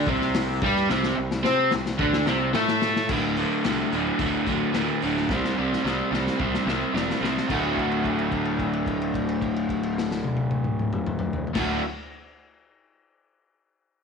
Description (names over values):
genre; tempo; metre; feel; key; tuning
garage rock duo or trio; 109 BPM; 4/4; straight; D mixolydian; A4 = 440 Hz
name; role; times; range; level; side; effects
crunchy overdriven guitar; riff; 0.0-11.8 s; D2 to C5; -24 LUFS; equal; none
fuzz fingered electric bass; bass; 0.0-11.8 s; D1 to C3; -31 LUFS; right 1 dB; overdrive
crunchy breakbeat drum kit; drums; 0.1-11.7 s; crash cymbal, hi-hat, kick drum, snare drum, toms; -29 LUFS; left 3 dB; none
room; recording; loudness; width
light reverb, small room ambience; 1960s-style stereo; -22 LUFS; side -5 dB against mid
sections
0.0-3.1 A section; 3.1-7.5 B section; 7.5-11.9 C section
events
drum fill 0.9-3.1, 5.3-7.5; held note 7.5-11.6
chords
0.0 C5; 3.1 D5; 5.3 C5; 7.5 D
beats
0.35 | 0.90 1.45 2.00 2.54 | 3.09 3.64 4.19 4.74 | 5.29 5.84 6.39 6.94 | 7.49 8.04 8.59 9.14 | 9.69 10.24 10.79 11.34